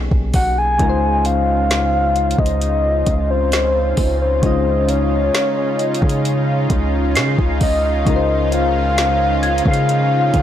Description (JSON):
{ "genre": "contemporary R&B", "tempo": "66 BPM", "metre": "4/4", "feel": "straight", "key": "Db major", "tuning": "A4 = 440 Hz", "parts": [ { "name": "soft electric-piano-like synth keys", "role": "accompaniment", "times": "0.0-10.4 s", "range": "Cb3 to Eb5", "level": "-23 LUFS", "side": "left 3 dB", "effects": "chorus" }, { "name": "long sustained 808-style bass", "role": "bass", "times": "0.0-10.4 s", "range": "Cb2 to Db3", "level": "-20 LUFS", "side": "equal", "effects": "none" }, { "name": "small celesta", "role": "texture", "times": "0.0-0.8, 7.2-10.4 s", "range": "Ab6 to C7", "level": "-25 LUFS", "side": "right 2 dB", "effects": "tape echo" }, { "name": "smooth R&B drum kit", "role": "drums", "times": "0.1-10.4 s", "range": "hi-hat, kick drum, snare drum", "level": "-19 LUFS", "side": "equal", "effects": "none" }, { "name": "soft octave-layered synth lead", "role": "melody", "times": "0.4-10.4 s", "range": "C5 to Ab5", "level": "-19 LUFS", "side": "left 1 dB", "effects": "chorus, tape echo" }, { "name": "lush unison pad", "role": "sustained chords", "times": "1.1-10.4 s", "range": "Db3 to F4", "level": "-23 LUFS", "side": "right 1 dB", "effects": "chorus" } ], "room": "digital ambience", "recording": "blown-out, overdriven recording, overdrive", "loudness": "-14 LUFS", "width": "side -10 dB against mid", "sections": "0.0-10.4 A section", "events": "none", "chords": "0.0 Cbmaj9; 0.8 Dbmaj9" }